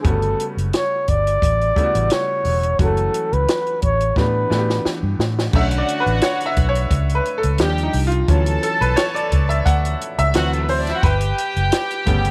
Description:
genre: lush 1970s-style soul.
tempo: 87 BPM.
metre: 4/4.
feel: swing 54% on 16ths.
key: B minor.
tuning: A4 = 441 Hz.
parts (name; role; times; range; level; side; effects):
breathy flugelhorn; melody; 0.0-4.9 s; G#4 to D5; -22 LUFS; equal; none.
bright grand piano; accompaniment; 0.0-12.3 s; C#3 to F#5; -26 LUFS; equal; none.
vintage muted fingered electric bass; bass; 0.0-12.3 s; E1 to A2; -22 LUFS; equal; none.
compact cocktail drum kit; drums; 0.0-12.3 s; crash cymbal, hi-hat, kick drum, snare drum; -23 LUFS; equal; none.
warm studio string section; second line; 5.5-12.3 s; A3 to A5; -26 LUFS; equal; none.
room: light reverb, studio reverb.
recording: none.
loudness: -19 LUFS.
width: mono.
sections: 0.0-5.5 A section; 5.5-12.3 B section.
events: drum fill 4.2-5.5; grand piano solo 5.5-12.3.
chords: 0.0 Gmaj9#11; 2.8 F#m7; 4.2 A9sus4; 5.5 Bm9; 7.6 D#maj9; 8.3 Dmaj9; 10.3 D13; 11.0 Gadd9(#11).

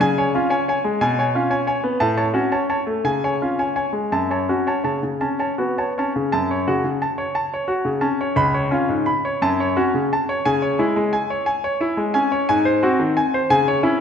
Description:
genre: classical, baroque-style suite movement for grand piano.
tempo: 53-62 BPM (dotted quarters).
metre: 6/8.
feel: rubato.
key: F# minor.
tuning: A4 = 442 Hz.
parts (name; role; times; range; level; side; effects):
bright grand piano; solo; 0.0-14.0 s; C#2 to B5; -18 LUFS; left 1 dB; none.
room: moderate concert hall reverb, RT60 2.3 s.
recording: minimal, uncompressed stereo recording.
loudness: -18 LUFS.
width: side -7 dB against mid.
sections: 0.0-6.3 A section; 6.3-14.0 B section.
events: none.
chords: 0.0 C#; 1.0 C#7/B; 2.0 F#m/A; 3.0 C#; 4.1 F#m; 8.4 C#7; 9.4 F#m; 10.4 C#m; 12.5 G#7; 13.5 C#m.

